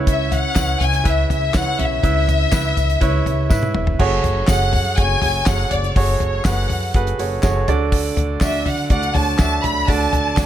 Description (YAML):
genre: piano-driven pop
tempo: 122 BPM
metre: 4/4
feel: straight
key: F# minor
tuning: A4 = 435 Hz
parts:
  - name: clear upright piano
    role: accompaniment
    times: 0.0-10.5 s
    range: C#3 to E5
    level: -22 LUFS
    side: right 4 dB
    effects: none
  - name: upright bass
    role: bass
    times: 0.0-10.5 s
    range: E1 to D3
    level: -21 LUFS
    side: equal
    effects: none
  - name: rich studio violin section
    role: melody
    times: 0.1-10.5 s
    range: C#5 to B5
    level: -22 LUFS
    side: left 2 dB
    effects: none
  - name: damped 70s drum kit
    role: drums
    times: 0.1-10.5 s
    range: crash cymbal, handclaps, hi-hat, kick drum, snare drum, toms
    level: -20 LUFS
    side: equal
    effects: none
  - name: tambourine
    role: percussion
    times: 0.6-10.5 s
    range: none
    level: -34 LUFS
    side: left 10 dB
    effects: none
room: light reverb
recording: none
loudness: -16 LUFS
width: side -11 dB against mid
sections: 0.0-4.0 A section; 4.0-10.5 B section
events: drum fill 3.5-4.0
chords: 0.0 C#m7; 4.0 F#madd9; 7.7 D